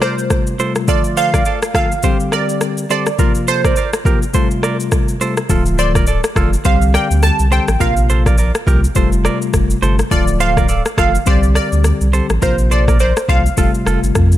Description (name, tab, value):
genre	afrobeats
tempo	104 BPM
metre	4/4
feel	swing 58% on 16ths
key	unclear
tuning	A4 = 439 Hz
part	glassy wavetable pluck	melody	0.0-14.1 s	C5 to A5	-19 LUFS	right 2 dB	chorus, digital delay
part	bell-like tine electric piano	accompaniment	0.0-14.4 s	C3 to G4	-20 LUFS	left 4 dB	auto-pan
part	direct-recorded clean electric guitar	riff	0.0-14.0 s	F4 to D5	-23 LUFS	right 6 dB	spring reverb, digital delay
part	afro-pop drum kit	drums	0.0-14.4 s	kick drum, rim click, shaker	-17 LUFS	equal	none
part	warm sub bass	bass	5.5-14.4 s	D1 to F2	-15 LUFS	equal	none
room	digital ambience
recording	none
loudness	-12 LUFS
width	side -13 dB against mid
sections	0.0-14.4 A section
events	none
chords	0.0 Fadd9; 0.9 Dm; 2.0 Csus2; 3.2 Fadd9; 5.5 Dm; 6.7 Csus2; 7.8 Bbsus2; 9.0 Fadd9; 10.1 Dm; 11.3 Csus2; 12.4 Bbsus2; 13.6 Fadd9